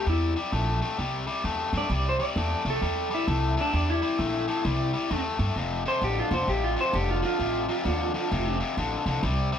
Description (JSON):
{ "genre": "electric blues shuffle", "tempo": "131 BPM", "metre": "4/4", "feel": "swing 64% on 8ths", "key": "unclear", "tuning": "A4 = 440 Hz", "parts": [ { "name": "electric slide guitar", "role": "melody", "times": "0.0-8.6 s", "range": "D4 to D5", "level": "-28 LUFS", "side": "equal", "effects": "none" }, { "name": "biting overdriven guitar", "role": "riff", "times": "0.0-9.6 s", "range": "F2 to A3", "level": "-29 LUFS", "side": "left 4 dB", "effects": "none" }, { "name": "upright bass", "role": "bass", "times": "0.1-9.5 s", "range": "F1 to G2", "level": "-28 LUFS", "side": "right 1 dB", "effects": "none" } ], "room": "light reverb", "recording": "none", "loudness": "-24 LUFS", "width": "side -8 dB against mid", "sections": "0.0-9.6 A section", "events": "none", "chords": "0.0 C; 5.6 F", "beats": "| 0.06 0.52 0.98 1.44 | 1.90 2.35 2.81 3.27 | 3.73 4.19 4.65 5.10 | 5.56 6.02 6.48 6.94 | 7.39 7.85 8.31 8.77 | 9.23" }